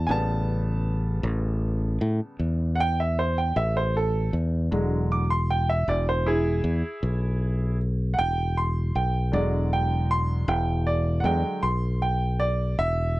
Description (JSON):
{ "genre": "slow blues", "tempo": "52 BPM (dotted quarters)", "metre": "12/8", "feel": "straight", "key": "unclear", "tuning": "A4 = 439 Hz", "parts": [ { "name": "bright baby grand piano", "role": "accompaniment", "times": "0.0-13.2 s", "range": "C#3 to D6", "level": "-27 LUFS", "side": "right 1 dB", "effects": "none" }, { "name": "fingered electric bass", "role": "bass", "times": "0.0-13.2 s", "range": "E1 to A2", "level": "-24 LUFS", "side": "equal", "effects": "none" } ], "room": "little or no reverb", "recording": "none", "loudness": "-22 LUFS", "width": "side -18 dB against mid", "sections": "0.0-13.2 A section", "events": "grand piano solo 0.0-13.2", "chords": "0.0 A9; 4.7 E9" }